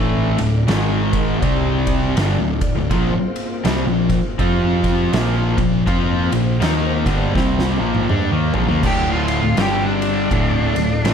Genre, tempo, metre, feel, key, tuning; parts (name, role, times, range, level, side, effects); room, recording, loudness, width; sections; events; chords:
stoner and doom metal; 81 BPM; 4/4; swing 60% on 8ths; A4 = 440 Hz
string machine, violas; sustained chords; 0.0-11.1 s; F3 to G5; -30 LUFS; equal; ensemble chorus
overdriven electric guitar; riff; 0.0-11.1 s; D2 to F4; -24 LUFS; right 1 dB
thick fuzz guitar; riff; 0.0-11.1 s; D2 to F4; -22 LUFS; left 9 dB; distortion
thick fuzz guitar; riff; 0.0-11.1 s; D2 to F4; -24 LUFS; right 9 dB; distortion
hollow-body short-scale picked electric bass; bass; 0.0-11.1 s; D1 to G2; -22 LUFS; equal; tube saturation
oversized low-tuned drum kit; drums; 0.4-11.1 s; crash cymbal, kick drum, ride cymbal, snare drum, toms; -22 LUFS; equal
octave-fuzz lead guitar; melody; 8.9-11.1 s; D4 to G4; -22 LUFS; equal; distortion
small room ambience; -16 LUFS; side -7 dB against mid
0.0-8.8 A section; 8.8-11.1 B section
drum fill 7.4-8.8; lead electric guitar solo 8.8-11.1
0.0 D5; 0.7 G#5; 1.4 C5; 2.2 D5; 2.9 Bb5; 4.4 F5; 5.1 Bb5; 8.8 Dm; 9.6 G5; 10.3 Dm